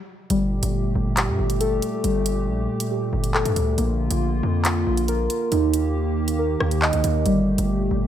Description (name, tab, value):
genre	hip hop, drill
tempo	138 BPM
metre	4/4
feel	half-time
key	G minor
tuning	A4 = 439 Hz
part	hollow soft pad	sustained chords	0.3-8.1 s	Bb2 to G4	-27 LUFS	right 1 dB	chorus
part	muted felt-like synth keys	arpeggios	0.3-8.1 s	G3 to Eb5	-24 LUFS	equal	chorus, ping-pong delay
part	distorted 808-style bass	bass	0.3-8.1 s	G1 to G2	-24 LUFS	equal	distortion
part	drill drum kit	drums	0.3-7.7 s	handclaps, hi-hat, rim click	-26 LUFS	equal	none
room	light reverb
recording	none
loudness	-20 LUFS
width	side -10 dB against mid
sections	0.3-8.1 A section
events	stop 0.0-0.3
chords	0.3 Gmadd9; 3.8 Bb; 5.5 Eb; 7.3 Gmadd9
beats	| 0.30 0.74 1.17 1.60 | 2.04 2.48 2.91 3.35 | 3.78 4.21 4.65 5.08 | 5.52 5.95 6.39 6.82 | 7.26 7.69